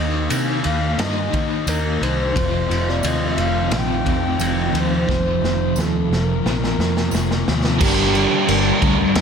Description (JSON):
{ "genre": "rock, shoegaze and dream pop", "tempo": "88 BPM", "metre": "4/4", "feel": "straight", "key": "unclear", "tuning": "A4 = 435 Hz", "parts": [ { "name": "breathy flute-like synth lead", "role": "melody", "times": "0.0-9.2 s", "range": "D4 to G5", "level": "-26 LUFS", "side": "left 2 dB", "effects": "chorus, analog delay" }, { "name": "biting overdriven guitar", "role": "riff", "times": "0.0-9.2 s", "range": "F2 to Bb4", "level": "-24 LUFS", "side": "right 10 dB", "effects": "reverse reverb" }, { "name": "crunchy overdriven guitar", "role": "riff", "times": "0.0-9.2 s", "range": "F2 to Eb4", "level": "-27 LUFS", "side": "equal", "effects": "tremolo" }, { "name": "thick fuzz guitar", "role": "riff", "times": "0.0-9.2 s", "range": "F2 to Eb4", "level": "-24 LUFS", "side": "left 8 dB", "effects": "distortion, ensemble chorus" }, { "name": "vintage muted fingered electric bass", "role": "bass", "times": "0.0-9.2 s", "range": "F1 to Eb3", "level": "-23 LUFS", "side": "equal", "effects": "none" }, { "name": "raw garage drum kit", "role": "drums", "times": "0.3-9.2 s", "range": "crash cymbal, kick drum, ride cymbal, snare drum", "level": "-23 LUFS", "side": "equal", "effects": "none" }, { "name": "tambourine", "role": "percussion", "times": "0.3-7.3 s", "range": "none", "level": "-34 LUFS", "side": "right 13 dB", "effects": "none" } ], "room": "moderate lush hall reverb, RT60 1.5 s, studio reverb", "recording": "dreamy mix soaked in reverb", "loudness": "-17 LUFS", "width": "side -6 dB against mid", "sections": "0.0-7.8 A section; 7.8-9.2 B section", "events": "drum fill 5.1-7.8", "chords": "0.0 Eb6; 2.4 F7sus4; 7.8 Gm" }